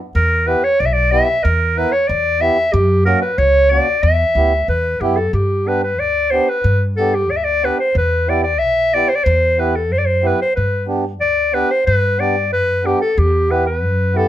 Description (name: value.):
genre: klezmer.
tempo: 92 BPM.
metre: 2/4.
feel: straight.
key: E dorian sharp4, G major from 5.3 s.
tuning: A4 = 440 Hz.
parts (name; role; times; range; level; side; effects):
upright bass; bass; 0.1-14.2 s; B1 to G2; -19 LUFS; equal; none.
clear clarinet; melody; 0.2-14.3 s; G4 to E5; -16 LUFS; equal; none.
mellow accordion; accompaniment; 0.5-14.3 s; A#3 to A#4; -20 LUFS; right 2 dB; none.
room: moderate small room reverb, RT60 0.5 s.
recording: none.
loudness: -14 LUFS.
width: side -12 dB against mid.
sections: 0.0-5.3 A section; 5.3-14.3 B section.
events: none.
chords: 0.1 Em; 2.7 F#; 4.0 Em; 5.3 G; 8.0 Em; 10.6 G; 13.2 Em.